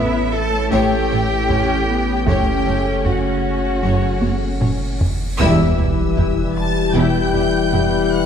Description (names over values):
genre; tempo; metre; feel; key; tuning
cinematic, hybrid orchestral and electronic film score; 77 BPM; 4/4; straight; E dorian; A4 = 440 Hz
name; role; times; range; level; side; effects
rich cello; melody; 0.0-5.0 s; E4 to A4; -24 LUFS; right 3 dB; digital delay
rich studio violin section; second line; 0.0-8.3 s; E5 to A5; -26 LUFS; left 3 dB; none
rich symphonic viola section; accompaniment; 0.0-7.8 s; A3 to G4; -26 LUFS; right 1 dB; none
mellow French horn section; sustained chords; 0.0-8.3 s; G3 to E4; -23 LUFS; left 6 dB; none
warbly tape-like pad; sustained chords; 0.0-8.3 s; C#3 to C#5; -25 LUFS; left 1 dB; chorus, built-in reverb
tight sequenced synth; arpeggios; 0.0-8.0 s; E3 to A4; -29 LUFS; left 4 dB; none
dark symphonic cello section; bass; 0.0-7.8 s; E2 to A2; -24 LUFS; right 3 dB; none
rich symphonic double bass section; bass; 0.0-7.8 s; E1 to A1; -25 LUFS; right 4 dB; none
saturated sub bass; bass; 0.0-8.3 s; E1 to A1; -25 LUFS; equal; none
clear symphonic violin section; melody; 0.7-8.3 s; C#5 to A6; -27 LUFS; left 3 dB; none
taiko ensemble; drums; 1.5-8.1 s; none; -23 LUFS; equal; none
cymbal swell and sub drop; sound effects; 4.4-8.3 s; none; -26 LUFS; equal; none
room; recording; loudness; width
moderate scoring stage reverb, RT60 1.5 s; dark, warm production; -15 LUFS; side -8 dB against mid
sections
0.0-5.4 A section; 5.4-8.3 B section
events
cymbal swell 4.4-5.4; drum fill 4.2-5.4; band accent 5.4-6.2; impact 5.4-8.3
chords
0.0 A; 2.3 F#m; 5.4 Em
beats
0.72 1.50 | 2.27 3.05 3.83 4.61 | 5.39 6.17 6.95 7.73